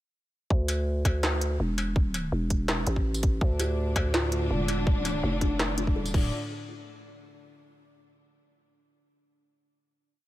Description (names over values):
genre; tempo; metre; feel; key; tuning
half-time drum and bass; 165 BPM; 4/4; half-time; D minor; A4 = 438 Hz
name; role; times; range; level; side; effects
growling 808-style bass; bass; 0.5-6.3 s; D1 to D2; -28 LUFS; equal; none
electronic kick drum; drums; 0.5-6.2 s; none; -25 LUFS; equal; none
industrial drum kit; drums; 0.7-6.2 s; crash cymbal, hi-hat, snare drum, struck metal, tambourine; -32 LUFS; equal; none
rich studio string section; sustained chords; 3.4-6.3 s; A2 to D4; -34 LUFS; left 1 dB; vintage 12-bit sampler grit, sidechain pumping
kalimba; arpeggios; 3.6-6.3 s; D3 to A4; -33 LUFS; equal; digital delay
room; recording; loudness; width
digital ambience; none; -25 LUFS; side -15 dB against mid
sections
0.5-6.3 drop; 6.3-7.8 final hit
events
drop 0.5-6.3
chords
0.5 D5; 6.3 N.C.